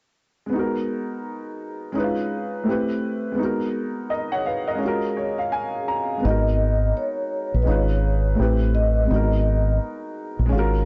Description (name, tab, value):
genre	lo-fi hip hop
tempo	84 BPM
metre	4/4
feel	swing 61% on 16ths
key	G# dorian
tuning	A4 = 440 Hz
part	dark upright piano	accompaniment	0.5-10.9 s	G#3 to A#5	-26 LUFS	equal	none
part	deep dub fingered electric bass	bass	6.2-10.9 s	G#1 to A#1	-22 LUFS	equal	none
part	vibraphone with soft mallets	melody	6.3-9.8 s	B4 to D#5	-29 LUFS	equal	none
room	light reverb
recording	dry, gritty hardware recording, nothing above 7.8 kHz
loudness	-23 LUFS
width	mono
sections	0.5-6.2 A section; 6.2-10.9 B section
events	upright piano fill 4.8-6.2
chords	0.5 G#m9; 1.9 C#9/G#; 2.7 Am9; 3.4 G#m9; 4.8 F#maj9/G#; 6.2 G#m9; 7.7 C#9/G#; 8.4 Am9; 9.1 G#m9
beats	| 0.52 1.24 1.95 2.66 | 3.38 4.09 4.81 5.52 | 6.24 6.95 7.66 8.38 | 9.09 9.81 10.52